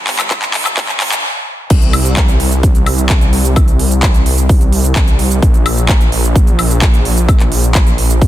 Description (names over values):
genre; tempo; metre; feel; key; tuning
EDM, festival progressive house; 129 BPM; 4/4; straight; unclear; A4 = 439 Hz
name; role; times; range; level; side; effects
wide detuned saw bass; bass; 0.0-8.3 s; G1 to C2; -14 LUFS; equal; chorus, sidechain pumping
big-room dance drum kit; drums; 0.1-8.3 s; crash cymbal, handclaps, hi-hat, shaker, woodblock; -17 LUFS; equal; high-pass filter on hats, high-pass filter on perc, soft clipping on snare, high-pass filter on snare, high-pass filter on cymbals
electronic kick drum; drums; 0.3-8.3 s; none; -10 LUFS; equal; none
room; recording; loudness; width
digital ambience; dense, heavily limited modern master, high-pass filter; -10 LUFS; side -13 dB against mid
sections
0.0-1.7 A section; 1.7-8.3 B section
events
build-up 0.0-1.7; drum fill 0.0-1.2; stop 1.2-1.7; drop 1.7-8.3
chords
none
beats
0.31 0.77 1.24 | 1.70 2.17 2.63 3.10 | 3.56 4.03 4.49 4.96 | 5.42 5.89 6.36 6.82 | 7.29 7.75 8.21